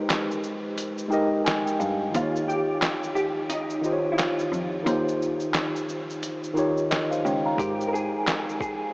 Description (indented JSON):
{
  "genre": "lo-fi hip hop",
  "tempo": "88 BPM",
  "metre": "4/4",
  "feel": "swing 60% on 16ths",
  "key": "unclear",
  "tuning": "A4 = 441 Hz",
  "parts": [
    { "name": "mellow tine electric piano", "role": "accompaniment", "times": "0.0-8.9 s", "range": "Eb3 to Bb5", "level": "-26 LUFS", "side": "equal", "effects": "medium stereo tremolo, cassette tape, low-pass filter" },
    { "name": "lo-fi sampler-style drum kit", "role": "drums", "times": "0.1-8.8 s", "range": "handclaps, hi-hat, kick drum, shaker, snare drum", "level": "-30 LUFS", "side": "equal", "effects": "none" },
    { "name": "clear cello", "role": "bass", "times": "1.8-8.0 s", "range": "Db2 to Ab2", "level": "-30 LUFS", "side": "equal", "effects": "none" },
    { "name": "vintage hollow-body jazz guitar", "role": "melody", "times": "2.2-8.9 s", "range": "Eb4 to Bb4", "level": "-30 LUFS", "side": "equal", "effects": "ensemble chorus, low-pass filter, analog delay" }
  ],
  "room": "wet huge ambient reverb, RT60 8.1 s",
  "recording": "dreamy mix soaked in reverb, cassette tape, small speaker sound",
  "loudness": "-23 LUFS",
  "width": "side -26 dB against mid",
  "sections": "0.0-8.9 A section",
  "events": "break 0.0-7.6; tine electric piano fill 0.8-2.1",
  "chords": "0.0 Abmaj9; 2.1 Eb9; 7.6 Abmaj9"
}